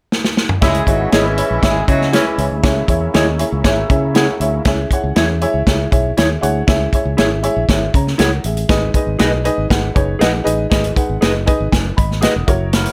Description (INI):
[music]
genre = uptempo 1960s-style soul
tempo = 119 BPM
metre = 4/4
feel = straight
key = C# dorian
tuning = A4 = 440 Hz
[part]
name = natural country drum kit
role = drums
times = 0.1-12.9 s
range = hi-hat, kick drum, snare drum, toms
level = -19 LUFS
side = equal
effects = none
[part]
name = mellow horn section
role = second line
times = 0.6-2.5 s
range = E3 to G#4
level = -22 LUFS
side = equal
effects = plate reverb
[part]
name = dark upright piano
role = accompaniment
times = 0.6-12.9 s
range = G#2 to D#6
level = -21 LUFS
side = equal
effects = none
[part]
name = overdriven tonewheel organ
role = sustained chords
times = 0.6-4.6, 12.7-12.9 s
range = E3 to E4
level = -29 LUFS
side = equal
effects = lush chorus, plate reverb
[part]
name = fingered electric bass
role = bass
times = 0.6-12.9 s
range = E1 to C#3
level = -22 LUFS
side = equal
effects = none
[part]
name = mellow electric guitar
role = stabs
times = 1.1-12.3 s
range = E4 to D#5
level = -21 LUFS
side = equal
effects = analog chorus
[sound]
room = light reverb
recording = none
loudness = -16 LUFS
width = mono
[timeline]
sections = 0.6-4.7 A section; 4.7-12.9 B section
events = drum fill 0.1-0.6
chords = 0.0 N.C.; 0.6 C#m; 8.7 G#m